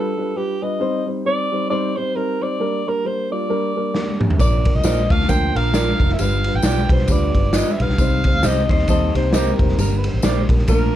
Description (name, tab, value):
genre	uptempo 1960s-style soul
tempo	134 BPM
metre	4/4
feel	swing 58% on 8ths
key	unclear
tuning	A4 = 440 Hz
part	breathy alto saxophone	melody	0.0-11.0 s	G4 to G5	-23 LUFS	right 1 dB	none
part	dark upright piano	accompaniment	0.0-10.9 s	F3 to C5	-23 LUFS	equal	none
part	raw garage drum kit	drums	3.9-10.8 s	kick drum, ride cymbal, snare drum, toms	-19 LUFS	equal	none
part	vintage muted fingered electric bass	bass	4.4-10.9 s	F1 to Eb2	-20 LUFS	equal	none
part	tambourine	percussion	4.4-10.8 s	none	-33 LUFS	left 7 dB	none
part	mellow electric guitar	stabs	4.8-10.4 s	F4 to Eb5	-24 LUFS	right 6 dB	none
part	electric guitar through a small old amp	riff	5.1-10.9 s	A3 to C5	-27 LUFS	left 3 dB	none
room	little or no reverb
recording	dark, warm production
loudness	-16 LUFS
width	side -12 dB against mid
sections	0.0-11.0 A section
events	drum fill 3.9-4.4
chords	0.0 G7; 0.8 Cm; 2.6 Gm; 4.4 Bb; 6.2 G7; 8.0 Cm; 9.8 Gm